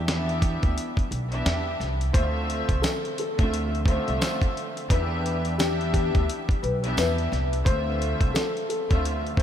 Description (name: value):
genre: hip hop, boom-bap hip-hop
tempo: 87 BPM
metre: 4/4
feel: swing 61% on 16ths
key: D dorian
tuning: A4 = 440 Hz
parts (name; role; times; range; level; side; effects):
- warm studio string section; accompaniment; 0.0-9.4 s; D3 to E5; -30 LUFS; equal; cassette tape, high-pass filter, low-pass filter
- upright bass; bass; 0.0-9.4 s; B1 to E2; -27 LUFS; equal; none
- dusty soul sampler-style drum kit; drums; 0.1-9.4 s; hi-hat, kick drum, snare drum; -26 LUFS; equal; none
- dark upright piano; melody; 2.1-9.4 s; G4 to C5; -30 LUFS; left 3 dB; lush chorus, high-pass filter, low-pass filter, tape echo
- tambourine; percussion; 2.8-8.5 s; none; -45 LUFS; left 8 dB; none
room: moderate cathedral reverb, RT60 5.6 s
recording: dreamy mix soaked in reverb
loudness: -23 LUFS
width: side -10 dB against mid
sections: 0.0-2.1 A section; 2.1-9.4 B section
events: none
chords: 0.0 Em7; 2.1 Dm7; 4.9 Em7; 7.7 Dm7